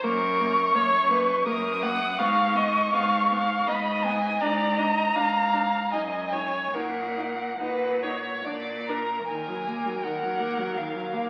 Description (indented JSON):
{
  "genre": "classical, slow romantic movement for string quartet",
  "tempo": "70-86 BPM",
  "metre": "3/4",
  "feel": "rubato",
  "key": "Eb minor",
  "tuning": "A4 = 442 Hz",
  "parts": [
    { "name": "warm violin", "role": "melody", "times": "0.0-11.3 s", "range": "F5 to Eb6", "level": "-28 LUFS", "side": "equal", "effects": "none" },
    { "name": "rich violin", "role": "second line", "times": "0.0-11.3 s", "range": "Bb4 to Gb5", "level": "-31 LUFS", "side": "equal", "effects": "none" },
    { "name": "rich viola", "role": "accompaniment", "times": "0.0-11.3 s", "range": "Eb3 to Eb4", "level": "-37 LUFS", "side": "equal", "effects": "none" },
    { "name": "rich cello", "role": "bass", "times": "0.0-11.3 s", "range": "Eb2 to Bb2", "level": "-35 LUFS", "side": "equal", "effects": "none" }
  ],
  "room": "wet recital hall reverb, RT60 1.5 s",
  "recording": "very old 78 rpm record, vinyl crackle",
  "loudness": "-25 LUFS",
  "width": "mono",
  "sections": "0.0-9.3 A section; 9.3-11.3 B section",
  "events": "none",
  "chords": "0.0 Gb; 2.2 Abmadd11; 4.4 Bb7/Ab; 5.9 Ebm/Gb; 6.7 Ebm/Bb; 8.4 Bb; 9.3 Ebm",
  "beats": "| 0.04 0.74 1.46 | 2.19 2.93 3.68 | 4.41 5.15 5.92 | 6.74 7.60 8.45 | 9.28 10.04 10.77"
}